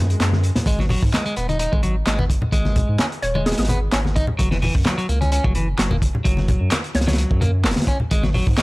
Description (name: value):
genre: breakbeat, breaks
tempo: 129 BPM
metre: 4/4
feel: swing 53% on 16ths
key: F# mixolydian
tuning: A4 = 440 Hz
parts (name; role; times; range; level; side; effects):
- saturated sub bass; bass; 0.0-8.5 s; D#1 to G#2; -21 LUFS; equal; tube saturation
- swell; sound effects; 0.0-0.7 s; none; -32 LUFS; left 3 dB; none
- crunchy breakbeat drum kit; drums; 0.1-8.6 s; hi-hat, kick drum, snare drum; -21 LUFS; equal; none
- electronic handclaps; drums; 0.2-8.6 s; none; -26 LUFS; equal; none
- congas; percussion; 0.3-8.6 s; none; -26 LUFS; left 1 dB; none
- clean electric guitar; riff; 0.7-8.6 s; E3 to D#4; -25 LUFS; equal; tube saturation, tape echo
- hollow square pluck; melody; 3.2-3.7, 7.0-7.1 s; G#4 to C#5; -28 LUFS; equal; chorus, small speaker sound, tape echo
room: small room ambience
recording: dry, gritty hardware recording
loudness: -17 LUFS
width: side -22 dB against mid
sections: 0.0-8.6 A section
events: break 0.0-0.7; swell 0.0-0.7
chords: 0.0 F#5; 0.7 G#5; 4.4 F#5; 8.1 G#7(no3)